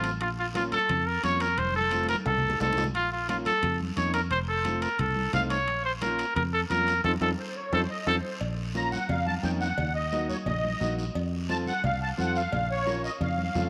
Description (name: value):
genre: latin, cumbia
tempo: 176 BPM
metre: 4/4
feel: straight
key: Bb harmonic minor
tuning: A4 = 440 Hz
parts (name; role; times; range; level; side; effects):
- clear trumpet; melody; 0.0-8.2 s; F4 to F5; -29 LUFS; equal; none
- overdriven combo organ; accompaniment; 0.0-13.7 s; A3 to Bb4; -39 LUFS; equal; none
- fingered electric bass; bass; 0.0-13.7 s; F1 to F2; -34 LUFS; equal; none
- guiro; percussion; 0.0-13.7 s; none; -46 LUFS; equal; none
- timbales and cowbell; percussion; 0.0-13.7 s; none; -42 LUFS; equal; none
- congas; percussion; 0.2-13.7 s; none; -39 LUFS; equal; none
- musette accordion; second line; 7.4-13.7 s; C5 to Bb5; -33 LUFS; equal; none
room: moderate plate reverb, RT60 2.6 s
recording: none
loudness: -28 LUFS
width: mono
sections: 0.0-8.4 A section; 8.4-13.7 B section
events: drum fill 1.6-2.9, 7.9-8.4; band accent 7.0-8.4; accordion solo 8.4-13.7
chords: 0.2 Bbm; 1.6 F7; 2.9 Bbm; 4.3 F7; 5.7 Bbm; 7.0 F7; 8.4 Bbm; 9.8 Ebm; 11.2 F; 12.5 Bbm